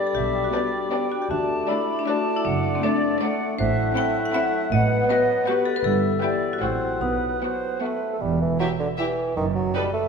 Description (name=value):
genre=cinematic, playful, whimsical film cue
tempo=157 BPM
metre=3/4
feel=straight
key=E minor from 3.6 s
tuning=A4 = 440 Hz
part: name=marimba with hard mallets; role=melody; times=0.0-7.8 s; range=C4 to G5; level=-27 LUFS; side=left 5 dB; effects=none
part: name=rich studio violin section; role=melody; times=0.0-9.8 s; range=B4 to G5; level=-35 LUFS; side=left 3 dB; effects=none
part: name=rich studio violin section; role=second line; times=0.0-9.8 s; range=D4 to A4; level=-34 LUFS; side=left 4 dB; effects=none
part: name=silver concert flute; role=second line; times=0.0-8.2 s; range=A4 to B5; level=-30 LUFS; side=left 2 dB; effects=none
part: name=warm oboe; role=second line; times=0.0-8.0 s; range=D5 to F#5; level=-30 LUFS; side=equal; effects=none
part: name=clear bassoon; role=accompaniment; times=0.0-10.1 s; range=D3 to C4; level=-27 LUFS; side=right 2 dB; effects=none
part: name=warm studio viola section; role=accompaniment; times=0.0-9.8 s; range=A3 to E4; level=-33 LUFS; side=right 2 dB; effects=none
part: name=mellow French horn section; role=sustained chords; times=0.0-8.0 s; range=E3 to E4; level=-31 LUFS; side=left 2 dB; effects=none
part: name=warm studio cello section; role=bass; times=0.1-9.7 s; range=E2 to D3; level=-28 LUFS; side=right 4 dB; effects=none
part: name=clear studio double bass section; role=bass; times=0.2-9.7 s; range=E1 to D2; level=-30 LUFS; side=right 3 dB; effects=none
room=wet scoring stage reverb, RT60 1.9 s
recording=minimal, uncompressed stereo recording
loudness=-21 LUFS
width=side -5 dB against mid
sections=0.0-8.2 A section; 8.2-10.1 B section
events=none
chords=0.1 G/B; 1.3 D; 2.5 D/F#; 3.6 F#m7b5/A; 4.7 B7/A; 5.8 Em/G; 6.6 F#dim/A; 7.0 B; 8.2 Em; 9.4 B7/F# (rootless)